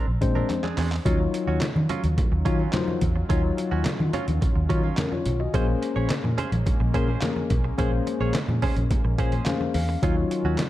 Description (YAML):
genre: early-eighties boogie funk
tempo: 107 BPM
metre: 4/4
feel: straight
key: Eb dorian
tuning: A4 = 440 Hz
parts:
  - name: direct-recorded clean electric guitar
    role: riff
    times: 0.0-10.6 s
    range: Gb3 to Db5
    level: -33 LUFS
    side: right 6 dB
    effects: wide subtle chorus
  - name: vintage muted fingered electric bass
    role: bass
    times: 0.1-10.6 s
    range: Bb1 to Eb3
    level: -25 LUFS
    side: equal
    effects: none
  - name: tine electric piano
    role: accompaniment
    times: 0.2-10.6 s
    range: Gb3 to Ab5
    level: -28 LUFS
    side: left 5 dB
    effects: none
  - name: trip hop sampler-style drum kit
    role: drums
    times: 0.2-10.7 s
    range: handclaps, hi-hat, kick drum, snare drum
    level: -26 LUFS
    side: equal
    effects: none
  - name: congas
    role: percussion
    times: 0.2-10.7 s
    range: none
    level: -33 LUFS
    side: left 2 dB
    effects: none
  - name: brassy analog pad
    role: sustained chords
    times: 1.1-10.7 s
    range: Eb3 to F4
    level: -34 LUFS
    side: equal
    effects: chorus
room: little or no reverb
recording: dark, warm production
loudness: -22 LUFS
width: side -14 dB against mid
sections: 0.0-1.1 A section; 1.1-10.7 B section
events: drum fill 0.5-1.1; tine electric piano fill 8.9-10.0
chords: 0.0 Bb9; 1.1 Ebm9; 5.5 Bbm9; 10.0 Ebm9